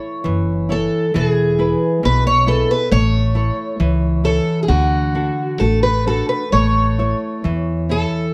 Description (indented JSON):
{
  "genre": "fado-style ballad",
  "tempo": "67 BPM",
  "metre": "2/4",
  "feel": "rubato",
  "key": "A major",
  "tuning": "A4 = 441 Hz",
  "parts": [
    { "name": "fingerpicked twelve-string acoustic guitar", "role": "melody", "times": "0.0-8.3 s", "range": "F#4 to C#5", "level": "-22 LUFS", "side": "equal", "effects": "plate reverb" },
    { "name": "nylon-string guitar", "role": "accompaniment", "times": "0.0-8.3 s", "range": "B2 to C#5", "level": "-22 LUFS", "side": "equal", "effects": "none" },
    { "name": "upright bass", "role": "bass", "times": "0.3-8.0 s", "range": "E1 to E2", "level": "-21 LUFS", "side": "equal", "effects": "none" }
  ],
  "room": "light reverb",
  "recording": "none",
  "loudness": "-17 LUFS",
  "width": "mono",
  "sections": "0.0-8.3 A section",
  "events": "none",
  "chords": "0.0 A; 1.1 E; 2.9 A; 4.7 D; 6.5 A"
}